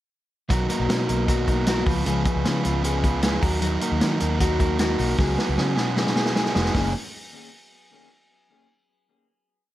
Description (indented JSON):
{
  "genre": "jangly indie pop",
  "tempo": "154 BPM",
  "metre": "4/4",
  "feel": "straight",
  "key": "F# major",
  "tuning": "A4 = 439 Hz",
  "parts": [
    { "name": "crunchy overdriven guitar", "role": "accompaniment", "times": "0.5-6.9 s", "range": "B2 to B4", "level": "-26 LUFS", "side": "right 4 dB", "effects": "none" },
    { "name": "mellow electric guitar", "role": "arpeggios", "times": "0.5-6.9 s", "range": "D#3 to G#4", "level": "-26 LUFS", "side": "left 4 dB", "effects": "none" },
    { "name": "vintage muted fingered electric bass", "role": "bass", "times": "0.5-6.9 s", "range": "E#1 to D#3", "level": "-26 LUFS", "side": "equal", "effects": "none" },
    { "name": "vintage drum kit", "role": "drums", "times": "0.5-6.8 s", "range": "hi-hat, kick drum, snare drum", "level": "-25 LUFS", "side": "equal", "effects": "gated reverb" }
  ],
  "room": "light reverb",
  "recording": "none",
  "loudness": "-20 LUFS",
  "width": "side -14 dB against mid",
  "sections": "0.5-6.7 bridge; 6.7-8.3 final chord",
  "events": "drum fill 5.2-6.7",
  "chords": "0.5 Bmaj7; 1.9 C#7; 3.4 D#m; 5.2 C#7sus4; 6.7 F#69",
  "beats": "| 0.50 0.89 1.28 1.68 | 2.07 2.46 2.85 3.24 | 3.63 4.02 4.41 4.80 | 5.19 5.58 5.97 6.36 | 6.75"
}